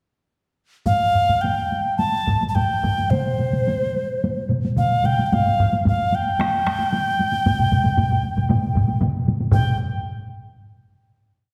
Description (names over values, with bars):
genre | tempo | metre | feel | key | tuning
japanese traditional, taiko drum ensemble | 106-124 BPM | 4/4 | straight | unclear | A4 = 440 Hz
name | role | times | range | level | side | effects
bright alto ocarina | melody | 0.9-9.8 s | C5 to A5 | -24 LUFS | equal | none
taiko ensemble | percussion | 0.9-9.8 s | none | -28 LUFS | equal | none
taiko ensemble | percussion | 0.9-10.0 s | none | -25 LUFS | equal | none
taiko ensemble | percussion | 3.1-10.0 s | none | -26 LUFS | equal | none
room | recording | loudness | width
wet recital hall reverb, RT60 1.6 s | recorded in a church or concert hall | -20 LUFS | mono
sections
0.9-9.5 A section; 9.5-11.5 final note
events
speeding up 0.9-11.5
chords
none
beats
| 0.86 1.43 1.99 2.55 | 3.11 3.67 4.22 4.78 | 5.32 5.86 6.40 6.93 | 7.46 7.99 8.51 9.02 | 9.53